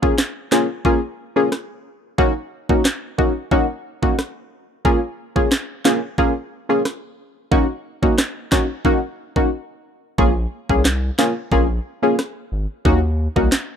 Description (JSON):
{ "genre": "dancehall", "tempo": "90 BPM", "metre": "4/4", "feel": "straight", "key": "Bb minor", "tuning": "A4 = 440 Hz", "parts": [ { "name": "punchy chord stab", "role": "accompaniment", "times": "0.0-13.5 s", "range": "Bb3 to Ab4", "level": "-18 LUFS", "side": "left 1 dB", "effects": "chorus" }, { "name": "afro-pop drum kit", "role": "drums", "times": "0.0-13.7 s", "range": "handclaps, kick drum, rim click, snare drum", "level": "-19 LUFS", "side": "equal", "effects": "overdrive" }, { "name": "round analog bass", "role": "bass", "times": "10.2-13.5 s", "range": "Ab1 to Eb2", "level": "-20 LUFS", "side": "equal", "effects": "none" } ], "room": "little or no reverb", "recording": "rough home demo mix", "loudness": "-17 LUFS", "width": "side -8 dB against mid", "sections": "0.0-13.8 A section", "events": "break 9.5-10.2", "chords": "0.0 Bbm7; 2.2 Ebm7; 4.9 Bbm7; 7.5 Ebm7; 10.2 Bbm7; 12.9 Ebm7" }